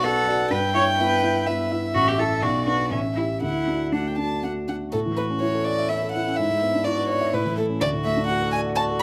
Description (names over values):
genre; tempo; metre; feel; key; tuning
quick classical-period movement for piano trio; 125 BPM; 3/4; straight; D major, A major from 4.9 s; A4 = 440 Hz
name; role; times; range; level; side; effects
dark violin; melody; 0.0-9.0 s; A4 to B5; -28 LUFS; equal; none
rich cello; second line; 0.0-9.0 s; C#4 to C#5; -28 LUFS; equal; none
dark baby grand piano; accompaniment; 0.0-9.0 s; A1 to F#5; -27 LUFS; equal; none
room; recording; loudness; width
light reverb; close, detailed microphones; -23 LUFS; mono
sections
0.0-4.9 A section; 4.9-9.0 B section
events
none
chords
0.0 Bm; 0.5 Em/G; 2.0 A5; 2.4 Bm; 2.9 A7(no3); 3.4 D; 4.9 A; 6.4 E7/G#; 7.3 A; 7.8 D